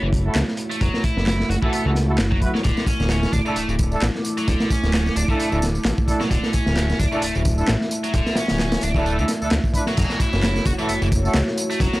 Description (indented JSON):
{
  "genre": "breakbeat, breaks",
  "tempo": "131 BPM",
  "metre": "4/4",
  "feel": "swing 56% on 16ths",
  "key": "F# minor",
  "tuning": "A4 = 440 Hz",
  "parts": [
    { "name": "dark analog pad", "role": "sustained chords", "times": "0.0-12.0 s", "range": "A3 to D6", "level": "-26 LUFS", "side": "equal", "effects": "chorus, sidechain pumping" },
    { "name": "tight distorted guitar", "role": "riff", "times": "0.0-12.0 s", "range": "C#3 to F#4", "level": "-28 LUFS", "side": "equal", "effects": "distortion, overdrive, vintage 12-bit sampler grit, low-pass filter, analog delay" },
    { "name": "fat analog bass", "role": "bass", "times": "0.0-11.9 s", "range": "D1 to D2", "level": "-22 LUFS", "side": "equal", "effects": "none" },
    { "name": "crunchy breakbeat drum kit", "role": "drums", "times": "0.1-12.0 s", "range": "crash cymbal, hi-hat, kick drum, snare drum", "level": "-22 LUFS", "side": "equal", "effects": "none" },
    { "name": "warm brass ensemble", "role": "stabs", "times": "0.3-11.4 s", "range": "D4 to B4", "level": "-27 LUFS", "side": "right 1 dB", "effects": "analog delay" },
    { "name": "electronic handclaps and tambourine", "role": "drums", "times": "0.4-12.0 s", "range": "none", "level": "-32 LUFS", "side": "equal", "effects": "overdrive" }
  ],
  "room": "little or no reverb",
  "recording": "dry, gritty hardware recording, transformer saturation, cassette tape",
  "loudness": "-18 LUFS",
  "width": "side -18 dB against mid",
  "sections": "0.0-10.0 A section; 10.0-12.0 B section",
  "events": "drop 10.0-12.0",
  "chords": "0.0 F#m7; 2.6 Dsus2; 10.0 F#m7"
}